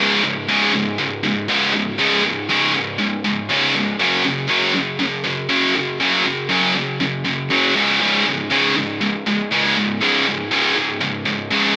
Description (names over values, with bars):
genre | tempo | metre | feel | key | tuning
rock | 120 BPM | 4/4 | straight | unclear | A4 = 435 Hz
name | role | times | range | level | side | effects
scooped high-gain guitar | solo | 0.0-11.8 s | Db2 to Gb3 | -15 LUFS | equal | distortion, cassette tape, tape echo
room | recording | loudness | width
light reverb | home recording on cassette, small speaker sound | -15 LUFS | side -24 dB against mid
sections
0.0-11.8 A section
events
none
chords
0.0 Db5; 4.0 Gb5; 7.8 Db5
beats
0.48 0.99 1.49 | 1.99 2.49 2.99 3.49 | 4.00 4.50 5.00 5.50 | 6.00 6.50 7.00 7.50 | 8.01 8.51 9.01 9.51 | 10.01 10.51 11.02 11.52